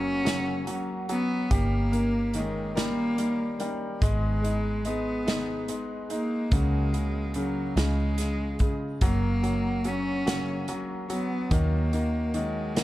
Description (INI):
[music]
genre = six-eight pop ballad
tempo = 48 BPM (dotted quarters)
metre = 6/8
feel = straight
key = F# major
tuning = A4 = 444 Hz
[part]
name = warm cello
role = melody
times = 0.0-12.8 s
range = F#3 to C#4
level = -30 LUFS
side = equal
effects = none
[part]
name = clear concert grand piano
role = accompaniment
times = 0.0-12.8 s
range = C#3 to G4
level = -32 LUFS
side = left 1 dB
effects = none
[part]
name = fingerpicked plugged-in steel-string acoustic guitar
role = arpeggios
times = 0.0-12.8 s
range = F#2 to D#5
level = -36 LUFS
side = equal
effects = none
[part]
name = vintage muted fingered electric bass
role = bass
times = 0.0-12.8 s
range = F#1 to D#2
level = -29 LUFS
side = equal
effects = none
[part]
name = natural country drum kit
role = drums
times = 0.3-12.8 s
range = hi-hat, kick drum, snare drum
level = -28 LUFS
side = equal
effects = none
[sound]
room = little or no reverb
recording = dark, warm production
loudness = -25 LUFS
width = side -16 dB against mid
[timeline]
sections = 0.0-12.8 A section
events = none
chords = 0.0 F#; 1.5 D#7/G; 4.0 G#m; 6.5 F#/C#; 7.8 C#add9; 9.0 F#; 11.5 D#m7